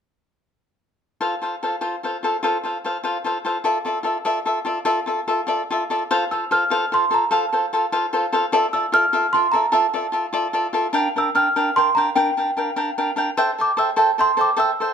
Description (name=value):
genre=mexican folk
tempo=99 BPM (dotted quarters)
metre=6/8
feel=straight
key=F major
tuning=A4 = 440 Hz
part: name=cavaquinho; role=accompaniment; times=1.2-14.9 s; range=D4 to G5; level=-20 LUFS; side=left 1 dB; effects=none
part: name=celesta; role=melody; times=6.3-14.9 s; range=G5 to F6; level=-20 LUFS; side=right 2 dB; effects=none
room=light reverb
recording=close, detailed microphones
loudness=-18 LUFS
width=side -7 dB against mid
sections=1.2-6.1 A section; 6.1-14.9 B section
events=none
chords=1.2 F; 3.6 Dmadd9; 6.1 F; 8.5 Dmadd9; 11.0 Gm7; 13.4 C6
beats=| 1.21 1.82 | 2.44 3.04 | 3.65 4.26 | 4.87 5.48 | 6.10 6.71 | 7.32 7.93 | 8.52 9.12 | 9.73 10.34 | 10.95 11.56 | 12.17 12.77 | 13.38 13.97 | 14.58